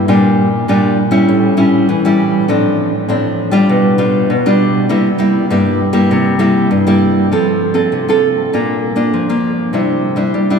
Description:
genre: samba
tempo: 100 BPM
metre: 4/4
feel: straight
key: F major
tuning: A4 = 440 Hz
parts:
  - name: nylon-string guitar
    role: solo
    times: 0.0-10.6 s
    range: G2 to A4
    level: -11 LUFS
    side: equal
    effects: none
room: wet cathedral reverb, RT60 6.1 s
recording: recorded in a church or concert hall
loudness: -11 LUFS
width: side -6 dB against mid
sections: 0.0-7.3 A section; 7.3-10.6 B section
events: none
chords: 0.1 Gm7/Bb; 1.3 A7; 2.5 Dm7/A; 3.7 G7/B; 4.9 C7; 7.3 F; 8.5 Bb; 9.7 Cadd9

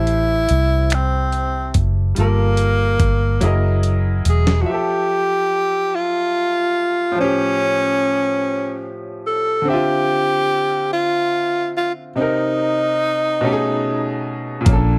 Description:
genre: slow six-eight R&B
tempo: 48 BPM (dotted quarters)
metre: 6/8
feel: straight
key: F major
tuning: A4 = 440 Hz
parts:
  - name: breathy tenor saxophone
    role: melody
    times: 0.0-14.2 s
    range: Bb3 to A4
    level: -21 LUFS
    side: equal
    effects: slapback echo
  - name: bright grand piano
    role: accompaniment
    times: 0.0-15.0 s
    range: A2 to E5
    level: -26 LUFS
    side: equal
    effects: none
  - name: vintage muted fingered electric bass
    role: bass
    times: 0.0-4.6, 14.7-15.0 s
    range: Fb1 to C2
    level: -19 LUFS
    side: equal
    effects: none
  - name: dusty soul sampler-style drum kit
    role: drums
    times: 0.1-4.7, 14.7-14.9 s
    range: finger snaps, hi-hat, kick drum, snare drum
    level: -21 LUFS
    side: equal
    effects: none
room: little or no reverb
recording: dry, close 1970s-style studio recording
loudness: -18 LUFS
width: mono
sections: 0.0-4.7 A section; 4.7-15.0 B section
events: drum fill 3.4-4.7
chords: 0.0 Am7; 2.2 Gm9; 3.4 Gb13; 4.7 Fmaj9; 7.2 A7alt; 9.7 Dm9; 12.2 Cm7; 13.4 B13

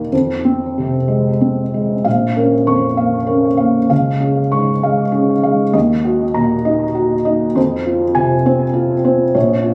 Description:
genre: neoclassical minimalist piano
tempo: 60-69 BPM (dotted quarters)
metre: 6/8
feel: rubato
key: Bb minor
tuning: A4 = 440 Hz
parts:
  - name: felt-muted upright piano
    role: solo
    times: 0.0-9.7 s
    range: Bb1 to Db6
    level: -15 LUFS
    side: equal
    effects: tape echo
room: moderate studio reverb, RT60 0.6 s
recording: recorded on a phone in the room, club reverb, compression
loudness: -15 LUFS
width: mono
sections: 0.0-2.1 A section; 2.1-9.7 A section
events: none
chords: 0.1 Fm; 2.1 Bbm; 3.9 Db; 5.7 Ebm; 7.6 Fm

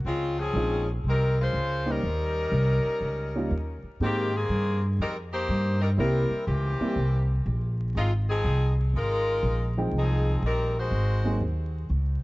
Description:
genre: jazz, big band swing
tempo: 122 BPM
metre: 4/4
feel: swing 66% on 8ths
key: F minor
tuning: A4 = 440 Hz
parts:
  - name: upright bass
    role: bass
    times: 0.0-12.2 s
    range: Ab1 to Ab2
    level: -26 LUFS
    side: equal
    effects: none
  - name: edgy saxophone section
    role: melody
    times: 0.1-11.4 s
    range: Eb3 to C5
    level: -29 LUFS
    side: left 1 dB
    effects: analog delay
  - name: warm baby grand piano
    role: accompaniment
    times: 0.6-11.4 s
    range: F3 to G5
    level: -30 LUFS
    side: right 1 dB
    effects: none
room: light reverb, studio reverb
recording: vinyl crackle, nothing above 7.7 kHz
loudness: -24 LUFS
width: side -20 dB against mid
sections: 0.0-11.9 A section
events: none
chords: 0.1 Dbmaj7; 2.0 Eb7; 4.0 Abmaj9; 6.0 C7; 8.0 Fm7; 10.9 Ab7

